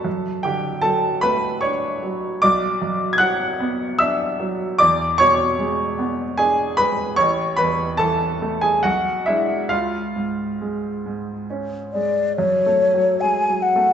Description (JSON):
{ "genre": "classical, romantic duo for flute and grand piano", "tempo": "66-77 BPM", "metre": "3/4", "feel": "rubato", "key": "F# minor", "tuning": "A4 = 440 Hz", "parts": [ { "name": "clear baby grand piano", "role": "accompaniment", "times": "0.0-13.9 s", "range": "A1 to G#6", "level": "-19 LUFS", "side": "right 1 dB", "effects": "none" }, { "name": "mellow hollow concert flute", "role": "melody", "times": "11.9-13.9 s", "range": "C#5 to G#5", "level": "-16 LUFS", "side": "left 2 dB", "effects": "none" } ], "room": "wet recital hall reverb, RT60 1.5 s", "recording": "recorded in a church or concert hall, nothing above 8.0 kHz", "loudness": "-18 LUFS", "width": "side -8 dB against mid", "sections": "0.0-12.4 A section; 12.4-13.9 B section", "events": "none", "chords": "0.1 D/F#; 2.4 Bm; 4.8 E7; 7.2 A; 8.8 G#dim/B; 9.7 C#; 12.4 F#m" }